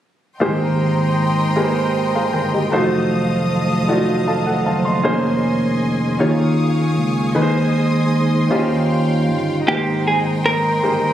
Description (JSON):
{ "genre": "gospel", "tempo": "52 BPM (dotted quarters)", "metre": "6/8", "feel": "straight", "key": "Ab major", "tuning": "A4 = 440 Hz", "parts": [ { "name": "clear concert grand piano", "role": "accompaniment", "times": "0.4-11.1 s", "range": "Ab2 to C6", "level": "-20 LUFS", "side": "equal", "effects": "none" }, { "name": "clear studio string section", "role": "sustained chords", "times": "0.4-11.1 s", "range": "Eb5 to Eb6", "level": "-25 LUFS", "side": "left 2 dB", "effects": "none" }, { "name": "percussive tonewheel organ", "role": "sustained chords", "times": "0.4-11.1 s", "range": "Eb3 to G5", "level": "-23 LUFS", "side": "right 4 dB", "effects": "slow rotary speaker, chorus vibrato" }, { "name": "fingered electric bass", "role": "bass", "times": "0.4-11.1 s", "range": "F1 to Eb2", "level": "-20 LUFS", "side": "equal", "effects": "none" }, { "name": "clean electric guitar", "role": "melody", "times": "9.7-11.1 s", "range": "G4 to Bb4", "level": "-18 LUFS", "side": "right 1 dB", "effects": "none" } ], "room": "light reverb, small room ambience", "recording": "recorded on a phone in the room, club reverb", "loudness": "-15 LUFS", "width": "side -11 dB against mid", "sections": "0.4-9.7 A section; 9.7-11.1 B section", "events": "grand piano fill 3.9-5.0", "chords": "0.4 Abmaj9; 2.7 F7b9; 5.0 Bbm11/F; 6.2 Eb9sus4; 7.4 Ab/Eb; 8.5 Eb13; 9.7 Abmaj9" }